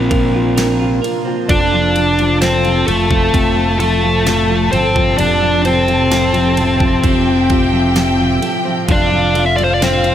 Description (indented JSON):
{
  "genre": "pop ballad",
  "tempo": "65 BPM",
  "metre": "4/4",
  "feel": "straight",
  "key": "F major",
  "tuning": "A4 = 442 Hz",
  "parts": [
    { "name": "dark smooth lead guitar", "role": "melody", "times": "0.0-10.1 s", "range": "A3 to E5", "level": "-15 LUFS", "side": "equal", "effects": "overdrive" },
    { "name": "felt-muted upright piano", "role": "accompaniment", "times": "0.0-10.1 s", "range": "C3 to F4", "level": "-21 LUFS", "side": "left 2 dB", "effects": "none" },
    { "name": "granular cloud pad", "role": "sustained chords", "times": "0.0-10.1 s", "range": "A2 to E5", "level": "-23 LUFS", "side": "equal", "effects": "built-in reverb" },
    { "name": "twelve-string electric guitar", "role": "arpeggios", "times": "0.0-10.1 s", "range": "Bb2 to Bb4", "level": "-24 LUFS", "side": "right 6 dB", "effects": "none" },
    { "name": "mellow fretless electric bass", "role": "bass", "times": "0.0-10.1 s", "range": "F1 to Bb1", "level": "-19 LUFS", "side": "equal", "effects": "none" },
    { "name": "pop drum kit", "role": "drums", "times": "0.1-10.1 s", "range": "kick drum, ride cymbal, snare drum", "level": "-21 LUFS", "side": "equal", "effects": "none" },
    { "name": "warm symphonic violin section", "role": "second line", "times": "1.5-10.1 s", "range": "F4 to A5", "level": "-21 LUFS", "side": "equal", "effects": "ping-pong delay" }
  ],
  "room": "light reverb",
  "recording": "none",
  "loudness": "-12 LUFS",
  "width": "side -10 dB against mid",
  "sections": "0.0-10.1 A section",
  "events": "none",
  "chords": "0.0 Bbadd9; 1.5 F; 8.9 Dm/F"
}